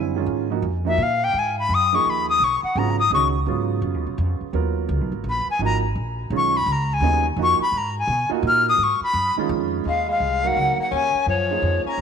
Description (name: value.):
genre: modal jazz.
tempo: 169 BPM.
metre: 3/4.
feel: swing 64% on 8ths.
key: G# dorian.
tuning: A4 = 440 Hz.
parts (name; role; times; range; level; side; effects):
warm grand piano; accompaniment; 0.0-12.0 s; C#3 to A#4; -27 LUFS; right 14 dB; none.
upright bass; bass; 0.0-12.0 s; G#1 to B2; -25 LUFS; equal; none.
breathy bright jazz flute; melody; 0.9-3.3, 5.3-12.0 s; Db5 to E#6; -20 LUFS; left 3 dB; slapback echo.
growling tenor saxophone; second line; 9.9-12.0 s; F3 to Db4; -27 LUFS; left 11 dB; none.
room: moderate plate reverb, RT60 3.2 s.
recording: 1960s-style stereo with parts hard left and right.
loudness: -19 LUFS.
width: side -7 dB against mid.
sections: 0.0-1.3 A section; 1.3-9.9 A section; 9.9-12.0 B section.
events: flute solo 0.0-9.9.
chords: 0.0 Dbadd9; 1.3 G#m11; 9.9 Ebm11.